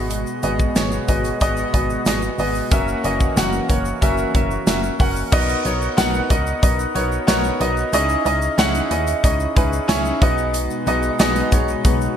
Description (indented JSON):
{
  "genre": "1980s-style pop",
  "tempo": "92 BPM",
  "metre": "4/4",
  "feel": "straight",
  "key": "B major",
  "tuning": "A4 = 441 Hz",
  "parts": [
    { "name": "clear baby grand piano", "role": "accompaniment", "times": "0.0-12.2 s", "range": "B3 to B5", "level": "-20 LUFS", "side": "equal", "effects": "analog chorus" },
    { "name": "brassy analog pad", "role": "sustained chords", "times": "0.0-5.3, 10.5-12.2 s", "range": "B2 to F#4", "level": "-27 LUFS", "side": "equal", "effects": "chorus" },
    { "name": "solid FM bass", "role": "bass", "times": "0.0-12.1 s", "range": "F#1 to D#2", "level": "-24 LUFS", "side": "equal", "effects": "none" },
    { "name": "modern studio drum kit", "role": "drums", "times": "0.1-12.0 s", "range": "crash cymbal, hi-hat, kick drum, snare drum, tambourine", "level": "-20 LUFS", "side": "equal", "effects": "gated reverb" },
    { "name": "egg shaker", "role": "percussion", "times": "0.1-12.2 s", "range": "none", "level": "-37 LUFS", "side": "left 9 dB", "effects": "none" }
  ],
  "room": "light reverb, small room ambience",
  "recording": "bright 1980s-style digital production",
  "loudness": "-16 LUFS",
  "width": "side -9 dB against mid",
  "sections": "0.0-5.3 A section; 5.3-12.2 B section",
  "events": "none",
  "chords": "0.0 G#m7; 2.7 F#7; 5.3 Bmaj7; 7.9 C#madd9; 10.2 G#m7/B"
}